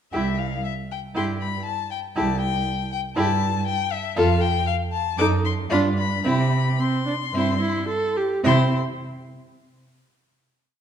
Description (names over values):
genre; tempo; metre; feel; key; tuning
quick classical-period movement for string quartet; 107-120 BPM; 4/4; rubato; C major; A4 = 439 Hz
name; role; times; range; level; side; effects
rich violin; melody; 0.1-8.8 s; E5 to D6; -27 LUFS; left 10 dB; none
rich violin; second line; 0.1-8.7 s; E4 to A4; -27 LUFS; left 3 dB; none
rich viola; accompaniment; 0.1-8.7 s; C4 to A4; -26 LUFS; right 2 dB; none
rich cello; bass; 0.1-8.7 s; C2 to C3; -24 LUFS; right 3 dB; none
room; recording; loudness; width
wet recital hall reverb, RT60 1.6 s; dark, warm production; -20 LUFS; side -8 dB against mid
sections
0.1-8.4 A section; 8.4-10.6 final chord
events
slowing down 3.2-8.4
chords
0.1 C; 4.2 F; 5.2 F#m6; 5.7 G7; 6.2 C; 8.4 N.C.